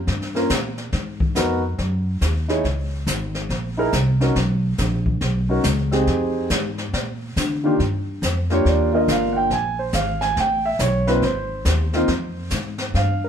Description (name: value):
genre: jazz, small-group swing and bop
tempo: 140 BPM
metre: 4/4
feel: swing 64% on 8ths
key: unclear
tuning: A4 = 440 Hz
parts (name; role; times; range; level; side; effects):
- upright bass; bass; 0.0-13.3 s; G1 to D3; -22 LUFS; equal; none
- jazz brush drum kit; drums; 0.1-13.3 s; brushed snare drum, hi-hat, kick drum, snare drum; -26 LUFS; left 1 dB; none
- warm concert grand piano; accompaniment; 0.3-13.3 s; Eb3 to Ab5; -21 LUFS; right 1 dB; none
room: light reverb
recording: band playing live in one room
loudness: -19 LUFS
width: side -8 dB against mid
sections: 0.0-7.8 A section; 7.8-13.3 B section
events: none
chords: 0.0 Eb7 (rootless); 0.9 Abm7; 2.6 Gb69 (rootless); 4.4 Bmaj9; 6.1 Fm7; 6.9 Bb; 7.8 Ebmaj7; 9.5 Ab69; 10.4 Asus2; 11.2 Ab6